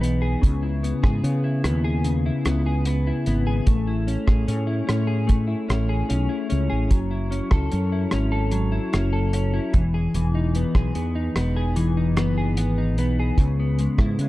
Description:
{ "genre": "indie pop, bedroom pop", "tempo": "74 BPM", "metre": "4/4", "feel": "straight", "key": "F# dorian", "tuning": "A4 = 440 Hz", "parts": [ { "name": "clean electric guitar", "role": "accompaniment", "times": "0.0-14.3 s", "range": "C#3 to A4", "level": "-24 LUFS", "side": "left 2 dB", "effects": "analog chorus, warbly pitch drift" }, { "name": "mellow fretless electric bass", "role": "bass", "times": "0.0-14.3 s", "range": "E1 to C#3", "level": "-23 LUFS", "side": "equal", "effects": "none" }, { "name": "cloth-damped thuddy drum kit", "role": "drums", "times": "0.0-14.3 s", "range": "hi-hat, kick drum, rim click", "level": "-22 LUFS", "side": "equal", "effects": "none" } ], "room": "studio reverb", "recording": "dark, warm production", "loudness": "-20 LUFS", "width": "side -17 dB against mid", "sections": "0.0-14.3 A section", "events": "none", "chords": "0.4 C#m7; 3.7 Amaj7; 6.9 F#m7; 9.7 Emaj7; 13.4 C#m7", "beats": "| 0.43 1.25 2.06 2.87 | 3.67 4.48 5.29 6.10 | 6.91 7.72 8.53 9.34 | 10.15 10.96 11.77 12.58 | 13.38 14.19" }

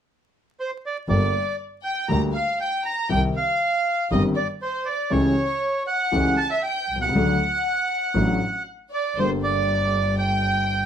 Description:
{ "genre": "tango", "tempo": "119 BPM", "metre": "4/4", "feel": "rubato", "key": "G minor", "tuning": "A4 = 436 Hz", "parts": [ { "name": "bandoneon", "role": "melody", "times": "0.6-10.9 s", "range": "C5 to Bb5", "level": "-24 LUFS", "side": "right 3 dB", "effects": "none" }, { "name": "warm studio violin section", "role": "second line", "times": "1.1-10.9 s", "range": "C5 to Bb5", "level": "-28 LUFS", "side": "left 2 dB", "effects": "none" }, { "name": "warm grand piano", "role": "accompaniment", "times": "1.1-10.9 s", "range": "G1 to A4", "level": "-24 LUFS", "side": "left 2 dB", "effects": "none" }, { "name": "clear double bass", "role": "bass", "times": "1.1-10.9 s", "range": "G1 to D2", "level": "-26 LUFS", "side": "right 1 dB", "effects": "none" } ], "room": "wet studio reverb, RT60 0.6 s", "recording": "band playing live in one room, vinyl crackle", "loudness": "-20 LUFS", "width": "side -8 dB against mid", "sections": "0.0-1.1 A section; 1.1-9.2 B section; 9.2-10.9 C section", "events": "none", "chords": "0.0 N.C.; 1.1 Gm; 3.1 Cm; 5.1 A7/C#; 7.1 D; 9.2 Gm", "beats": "0.07 0.58 | 1.08 1.59 2.10 2.60 | 3.10 3.61 4.11 4.61 | 5.12 5.62 6.13 6.63 | 7.14 7.65 8.16 8.67 | 9.18 9.69 10.19 10.70" }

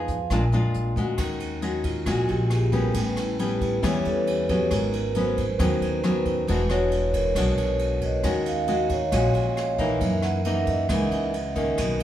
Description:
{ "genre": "bossa nova", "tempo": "136 BPM", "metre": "4/4", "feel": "straight", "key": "Eb minor", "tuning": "A4 = 440 Hz", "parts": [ { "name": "nylon-string guitar", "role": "accompaniment", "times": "0.0-12.0 s", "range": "Gb2 to Ab4", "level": "-26 LUFS", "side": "left 2 dB", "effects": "none" }, { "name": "upright bass", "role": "bass", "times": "0.0-12.0 s", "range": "E1 to Gb2", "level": "-27 LUFS", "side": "equal", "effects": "none" }, { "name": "jazz brush drum kit", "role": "drums", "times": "0.1-12.0 s", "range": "hi-hat, kick drum, ride cymbal, rim click", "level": "-32 LUFS", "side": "right 1 dB", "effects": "none" }, { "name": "vibraphone with soft mallets", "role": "accompaniment", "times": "1.8-12.0 s", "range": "E4 to Gb5", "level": "-27 LUFS", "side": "right 3 dB", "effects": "none" } ], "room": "wet large studio reverb, RT60 1.1 s", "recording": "heard from further back in the room", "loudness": "-22 LUFS", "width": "side -11 dB against mid", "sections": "0.0-1.2 A section; 1.2-12.0 A section", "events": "vibraphone solo 1.2-12.0", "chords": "0.3 Bb7; 1.2 Ebm7; 3.0 A9; 4.7 Abm7; 6.5 E9; 8.2 Ebm7; 10.0 Gb6", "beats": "0.31 0.75 | 1.19 1.63 2.07 2.51 | 2.95 3.39 3.83 4.27 | 4.71 5.15 5.60 6.04 | 6.48 6.92 7.36 7.80 | 8.24 8.69 9.13 9.57 | 10.01 10.45 10.89 11.34 | 11.78" }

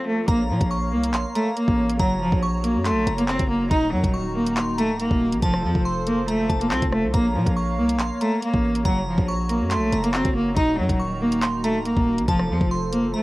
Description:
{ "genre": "hip hop, drill", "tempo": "140 BPM", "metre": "4/4", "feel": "half-time", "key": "Bb harmonic minor", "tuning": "A4 = 441 Hz", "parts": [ { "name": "rich cello", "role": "melody", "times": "0.0-13.2 s", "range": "F3 to Eb4", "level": "-22 LUFS", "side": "equal", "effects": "cassette tape, analog delay" }, { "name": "hollow soft pad", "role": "sustained chords", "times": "0.0-13.2 s", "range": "Eb3 to Bb5", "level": "-31 LUFS", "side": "equal", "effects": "chorus" }, { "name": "glassy synth bell", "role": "second line", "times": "0.3-13.2 s", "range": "A5 to Db6", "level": "-30 LUFS", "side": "right 1 dB", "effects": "chorus, phaser, analog delay" }, { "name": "distorted 808-style bass", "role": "bass", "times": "0.3-13.1 s", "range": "Db1 to Bb2", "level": "-27 LUFS", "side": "equal", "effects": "distortion" }, { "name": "drill drum kit", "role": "drums", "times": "0.3-13.0 s", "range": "handclaps, hi-hat, kick drum, rim click", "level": "-25 LUFS", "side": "equal", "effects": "cassette tape" } ], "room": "light reverb", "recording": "home recording on cassette, vinyl crackle", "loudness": "-19 LUFS", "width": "side -19 dB against mid", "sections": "0.3-13.2 A section", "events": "break 0.0", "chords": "0.3 Bbm; 2.0 Gb; 3.7 Ebm; 5.4 F; 7.1 Bbm; 8.9 Gb; 10.6 Ebm; 12.3 F", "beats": "| 0.28 0.71 1.14 1.57 | 2.00 2.42 2.85 3.28 | 3.71 4.14 4.57 5.00 | 5.42 5.85 6.28 6.71 | 7.14 7.57 8.00 8.42 | 8.85 9.28 9.71 10.14 | 10.57 10.99 11.42 11.85 | 12.28 12.71 13.14" }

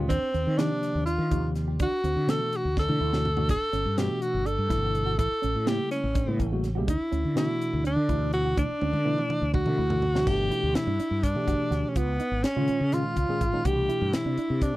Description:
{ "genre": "electric jazz fusion", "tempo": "248 BPM (eighths)", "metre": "7/8", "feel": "straight", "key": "D major", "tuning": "A4 = 442 Hz", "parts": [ { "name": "tine electric piano", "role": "accompaniment", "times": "0.0-14.8 s", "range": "Bb2 to A4", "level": "-31 LUFS", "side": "left 1 dB", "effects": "overdrive, fast stereo tremolo" }, { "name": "mellow electric guitar", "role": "stabs", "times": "0.0-14.6 s", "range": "Bb3 to G4", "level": "-36 LUFS", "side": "right 11 dB", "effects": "lush chorus" }, { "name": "mellow fretless electric bass", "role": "bass", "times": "0.0-14.7 s", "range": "G1 to Eb3", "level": "-28 LUFS", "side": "equal", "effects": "analog chorus" }, { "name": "bright tenor saxophone", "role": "melody", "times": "0.1-14.8 s", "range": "B3 to A4", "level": "-28 LUFS", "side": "equal", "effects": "none" }, { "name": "tight funk drum kit", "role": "drums", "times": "0.1-14.7 s", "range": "crash cymbal, hi-hat, kick drum, snare drum, toms", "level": "-30 LUFS", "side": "equal", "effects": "none" } ], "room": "little or no reverb", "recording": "dry, close 1970s-style studio recording", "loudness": "-24 LUFS", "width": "side -17 dB against mid", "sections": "0.0-10.3 A section; 10.3-14.8 B section", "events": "drum fill 2.8-3.5, 8.8-10.3", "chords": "0.1 Ebmaj7; 1.8 D69; 3.5 Gmaj9; 5.2 A7b9; 6.9 D6; 10.3 Gmaj9; 12.0 C#9; 13.6 C6", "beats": "| 0.10 0.34 0.58 0.83 1.07 1.31 1.55 | 1.80 2.04 2.28 2.52 2.77 3.01 3.25 | 3.49 3.73 3.98 4.22 4.46 4.70 4.95 | 5.19 5.43 5.67 5.92 6.16 6.40 6.64 | 6.88 7.12 7.37 7.61 7.85 8.09 8.33 | 8.57 8.82 9.06 9.30 9.54 9.78 10.03 | 10.27 10.51 10.75 10.99 11.23 11.47 11.72 | 11.96 12.20 12.44 12.68 12.92 13.16 13.41 | 13.65 13.89 14.13 14.37 14.61" }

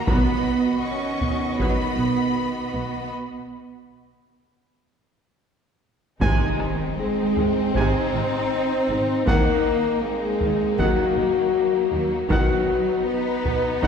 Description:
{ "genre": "cinematic, epic orchestral film score", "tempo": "79 BPM", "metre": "4/4", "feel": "straight", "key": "unclear", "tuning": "A4 = 443 Hz", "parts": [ { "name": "warm symphonic violin section", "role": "melody", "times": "0.0-13.9 s", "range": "Ab3 to Db6", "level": "-32 LUFS", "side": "left 4 dB", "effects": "none" }, { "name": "rich studio violin section", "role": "second line", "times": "0.0-13.9 s", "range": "Bb3 to D#5", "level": "-31 LUFS", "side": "left 2 dB", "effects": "none" }, { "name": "clear symphonic cello section", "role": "bass", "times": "0.0-13.9 s", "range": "Eb3 to D#4", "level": "-27 LUFS", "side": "right 4 dB", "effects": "none" }, { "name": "rich symphonic viola section", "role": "accompaniment", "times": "0.1-13.9 s", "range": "C3 to B3", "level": "-30 LUFS", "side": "right 2 dB", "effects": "none" }, { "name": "mellow French horn section", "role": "sustained chords", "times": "0.1-13.9 s", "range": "B3 to D#5", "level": "-25 LUFS", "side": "left 4 dB", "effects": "none" }, { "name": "warm trombone section", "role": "sustained chords", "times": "0.1-13.9 s", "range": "Eb3 to Eb4", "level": "-32 LUFS", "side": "right 2 dB", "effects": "none" }, { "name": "clear symphonic double bass section", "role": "bass", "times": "0.1-13.9 s", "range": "Ab1 to Eb2", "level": "-31 LUFS", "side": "right 2 dB", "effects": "none" }, { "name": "solo taiko drums", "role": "drums", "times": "0.1-13.9 s", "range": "none", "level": "-26 LUFS", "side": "equal", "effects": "none" }, { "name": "bright trumpet", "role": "stabs", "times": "6.2-13.9 s", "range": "Gb5 to Ab5", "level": "-31 LUFS", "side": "right 1 dB", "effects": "none" }, { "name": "impact", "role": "sound effects", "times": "6.4-9.3 s", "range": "none", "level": "-34 LUFS", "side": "equal", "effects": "none" } ], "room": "wet scoring stage reverb, RT60 2.0 s", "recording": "heard from further back in the room", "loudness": "-20 LUFS", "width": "side -7 dB against mid", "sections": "0.0-6.2 A section; 6.2-13.9 B section", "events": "break 3.1-6.2; impact 6.2-9.3", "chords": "0.1 B; 3.1 N.C.; 6.2 Ab; 9.3 Ebm; 12.3 B", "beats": "| 0.08 0.83 1.59 2.36 | 3.12 3.90 4.67 5.44 | 6.21 6.99 7.75 8.51 | 9.27 10.03 10.79 11.54 | 12.30 13.07 13.83" }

